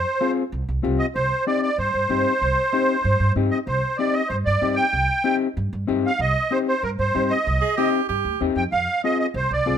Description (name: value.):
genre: latin.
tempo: 190 BPM.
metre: 4/4.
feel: straight.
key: C minor.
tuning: A4 = 444 Hz.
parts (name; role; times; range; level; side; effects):
musette accordion; melody; 0.0-9.8 s; Bb4 to G5; -21 LUFS; right 2 dB; none.
mellow electric guitar; accompaniment; 0.2-9.8 s; C4 to Ab4; -24 LUFS; left 7 dB; none.
upright bass; bass; 0.5-9.8 s; C2 to G2; -25 LUFS; right 1 dB; none.
clear tenor saxophone; second line; 7.6-8.5 s; G4 to Ab4; -24 LUFS; right 8 dB; none.
room: light reverb.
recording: minimal, uncompressed stereo recording.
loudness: -19 LUFS.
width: side -8 dB against mid.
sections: 0.0-3.7 A section; 3.7-9.8 A section.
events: none.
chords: 0.0 Fm; 1.1 Cm; 8.7 Fm.